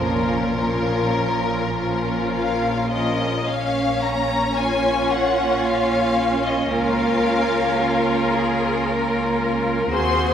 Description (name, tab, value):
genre	classical, slow romantic movement for string orchestra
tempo	50-57 BPM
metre	3/4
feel	rubato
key	Bb minor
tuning	A4 = 440 Hz
part	rich studio violin section	melody	0.0-10.3 s	Bb4 to C6	-24 LUFS	left 4 dB	none
part	rich studio violin section	second line	0.0-10.3 s	Db4 to Db5	-23 LUFS	left 2 dB	none
part	rich studio viola section	accompaniment	0.0-10.3 s	F3 to Db4	-24 LUFS	right 2 dB	none
part	rich studio cello section	bass	0.0-10.3 s	Bb2 to Bb4	-26 LUFS	right 1 dB	none
part	warm studio double bass section	bass	0.0-10.3 s	Bb1 to Eb2	-30 LUFS	right 4 dB	none
room	wet concert hall reverb, RT60 1.9 s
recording	recorded in a church or concert hall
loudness	-18 LUFS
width	side -8 dB against mid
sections	0.0-3.5 A section; 3.5-10.3 B section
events	none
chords	0.0 Bbm; 6.7 Bbm/Db